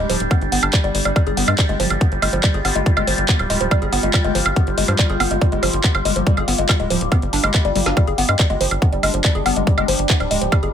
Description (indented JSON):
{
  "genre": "psychedelic trance",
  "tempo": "141 BPM",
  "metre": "4/4",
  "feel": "straight",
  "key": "unclear",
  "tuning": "A4 = 440 Hz",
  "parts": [
    { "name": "overtone-sweeping drone", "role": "sustained chords", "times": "0.0-10.7 s", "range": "G3 to F4", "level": "-24 LUFS", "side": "equal", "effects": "chorus, built-in reverb, phaser, sidechain pumping" },
    { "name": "woody wave-folded pluck", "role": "riff", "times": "0.0-10.7 s", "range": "F3 to Ab4", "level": "-22 LUFS", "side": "moving between left 8 dB and right 6 dB", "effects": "chorus, auto-pan, sidechain pumping, ping-pong delay" },
    { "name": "tight sequencer bass", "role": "bass", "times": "0.0-10.7 s", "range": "D1 to G2", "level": "-22 LUFS", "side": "equal", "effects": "none" },
    { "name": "drum and bass drum kit", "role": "drums", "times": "0.1-10.7 s", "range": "handclaps, hi-hat, snare drum, toms, woodblock", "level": "-21 LUFS", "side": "right 2 dB", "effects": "none" },
    { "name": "electronic kick drum", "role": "drums", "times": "0.3-10.6 s", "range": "none", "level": "-17 LUFS", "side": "equal", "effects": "none" }
  ],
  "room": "little or no reverb",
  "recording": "none",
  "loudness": "-15 LUFS",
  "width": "side -8 dB against mid",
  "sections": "0.0-10.7 A section",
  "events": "drum fill 7.8",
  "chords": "0.0 G5"
}